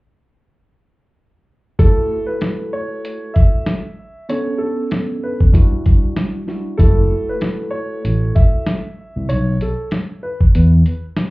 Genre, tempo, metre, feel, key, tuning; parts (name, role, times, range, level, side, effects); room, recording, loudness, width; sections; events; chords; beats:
hip hop, boom-bap hip-hop; 96 BPM; 4/4; swing 56% on 16ths; F# phrygian; A4 = 440 Hz
dark upright piano; melody; 1.8-10.4 s; A4 to E5; -26 LUFS; equal; high-pass filter, low-pass filter, digital delay
mellow tine electric piano; accompaniment; 1.8-8.8 s; G3 to A4; -23 LUFS; right 1 dB; medium stereo tremolo, cassette tape, high-pass filter, low-pass filter
dusty soul sampler-style drum kit; drums; 1.8-11.3 s; hi-hat, kick drum, snare drum; -13 LUFS; equal; vintage 12-bit sampler grit
smooth gliding synth bass; bass; 6.8-10.8 s; F#1 to E2; -13 LUFS; equal
little or no reverb; heard muffled through a wall, club reverb, EQ; -15 LUFS; side -22 dB against mid
1.8-11.3 A section
kick muted 10.5-11.3
1.8 F#m7; 4.3 Bm9; 5.5 Em9; 6.8 F#m7; 9.3 Aadd9/B; 10.5 N.C.
| 1.79 2.41 3.04 3.66 | 4.29 4.91 5.54 6.16 | 6.79 7.41 8.04 8.66 | 9.29 9.91 10.54 11.16